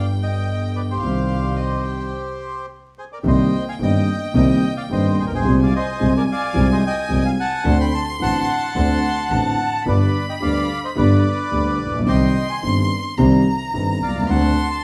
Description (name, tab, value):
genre	tango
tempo	109 BPM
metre	4/4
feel	rubato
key	C minor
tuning	A4 = 440 Hz
part	bandoneon	melody	0.0-14.8 s	G4 to C6	-27 LUFS	equal	none
part	warm violin	second line	0.0-14.8 s	Eb5 to C6	-31 LUFS	equal	none
part	warm concert grand piano	accompaniment	0.0-14.5 s	G1 to Ab4	-22 LUFS	equal	none
part	warm double bass	bass	0.0-14.5 s	G1 to D2	-24 LUFS	equal	none
room	wet large studio reverb, RT60 1.2 s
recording	heard from further back in the room, vinyl crackle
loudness	-19 LUFS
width	mono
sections	0.0-3.2 A section; 3.2-14.8 B section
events	stop 2.1-3.2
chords	0.0 G7; 1.0 Cm; 3.2 Cm7; 5.4 Fm/C; 7.7 D7; 9.9 G; 12.1 Cm; 14.3 D7